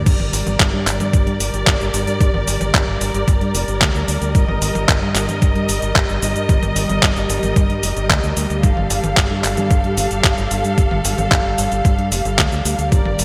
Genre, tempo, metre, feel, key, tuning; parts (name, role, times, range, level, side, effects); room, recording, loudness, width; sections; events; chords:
italo disco; 112 BPM; 4/4; straight; A4 = 441 Hz
dark studio string section; sustained chords; 0.0-13.2 s; G3 to F5; -24 LUFS; equal
fingered electric bass; bass; 0.0-13.2 s; F1 to G2; -24 LUFS; equal; tube saturation
detuned 8-bit digital drum machine; drums; 0.1-13.2 s; cabasa, crash cymbal, handclaps, hi-hat, toms; -22 LUFS; equal; overdrive
electronic kick drum; drums; 0.1-13.0 s; -19 LUFS; equal; overdrive
moderate lush hall reverb, RT60 1.9 s; bright 1980s-style digital production; -17 LUFS; mono
0.1-13.2 A section
0.0 Bb/G; 4.3 Eb/G; 8.6 F/G